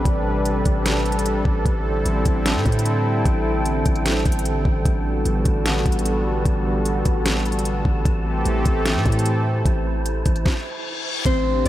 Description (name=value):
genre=hip hop, atmospheric cloud-rap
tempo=150 BPM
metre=4/4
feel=half-time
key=unclear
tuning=A4 = 436 Hz
part: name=warm analog pad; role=sustained chords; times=0.0-11.7 s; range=C3 to B4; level=-23 LUFS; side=equal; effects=chorus, sidechain pumping
part: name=warm 808-style bass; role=bass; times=0.0-11.7 s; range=A1 to A2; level=-23 LUFS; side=equal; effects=none
part: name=wind-like tuned noise texture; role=texture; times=0.0-11.7 s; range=C4 to B5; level=-32 LUFS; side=right 1 dB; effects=built-in reverb
part: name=smooth R&B drum kit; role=drums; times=0.1-11.7 s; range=hi-hat, kick drum, snare drum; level=-21 LUFS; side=equal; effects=none
part: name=reverse cymbal and downlifter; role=sound effects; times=10.6-11.7 s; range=none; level=-28 LUFS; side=left 5 dB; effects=none
part: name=Celtic harp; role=melody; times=11.3-11.7 s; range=C5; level=-22 LUFS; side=left 6 dB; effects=low-pass filter
part: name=glassy digital keys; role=arpeggios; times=11.3-11.7 s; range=C4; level=-24 LUFS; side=right 6 dB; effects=chorus, low-pass filter, tape echo
room=little or no reverb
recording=none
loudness=-18 LUFS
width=side -14 dB against mid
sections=0.0-11.3 A section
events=stop 10.5-11.3; reverse cymbal 10.6-11.3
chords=0.0 Am11; 1.7 D9sus4/A; 4.9 Gmaj9/A; 8.1 C6/A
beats=| 0.06 0.46 0.85 1.25 | 1.66 2.06 2.46 2.85 | 3.25 3.65 4.05 4.46 | 4.86 5.25 5.66 6.05 | 6.46 6.86 7.25 7.66 | 8.05 8.46 8.86 9.26 | 9.65 10.05 10.46 10.86 | 11.26 11.65